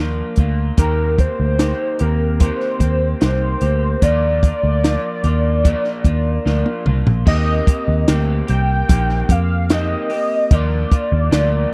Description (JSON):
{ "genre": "indie pop, bedroom pop", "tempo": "74 BPM", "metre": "4/4", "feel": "straight", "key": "Eb major", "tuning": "A4 = 440 Hz", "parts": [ { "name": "electric guitar through a small old amp", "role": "accompaniment", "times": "0.0-11.7 s", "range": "Bb2 to G4", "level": "-27 LUFS", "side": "equal", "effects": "subtle chorus, vibrato effect" }, { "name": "vintage muted picked electric bass", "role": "bass", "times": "0.0-11.6 s", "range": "Bb1 to F2", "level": "-20 LUFS", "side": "equal", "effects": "none" }, { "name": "compact cocktail drum kit", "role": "drums", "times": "0.4-11.5 s", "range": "crash cymbal, hi-hat, kick drum, snare drum, toms", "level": "-18 LUFS", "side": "equal", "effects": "none" }, { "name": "warm velvety synth lead", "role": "melody", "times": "0.8-11.7 s", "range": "Bb4 to G5", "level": "-24 LUFS", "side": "equal", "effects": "lush chorus, slapback echo" } ], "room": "little or no reverb", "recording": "dry, close 1970s-style studio recording", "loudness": "-17 LUFS", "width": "mono", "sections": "0.0-7.3 A section; 7.3-11.7 B section", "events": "drum fill 6.5-7.3", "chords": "0.0 Bb; 0.8 Eb6; 4.0 Bb; 7.3 Eb6; 10.5 Bb", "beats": "| 0.78 1.59 2.40 3.21 | 4.02 4.83 5.64 6.46 | 7.27 8.08 8.89 9.70 | 10.51 11.32" }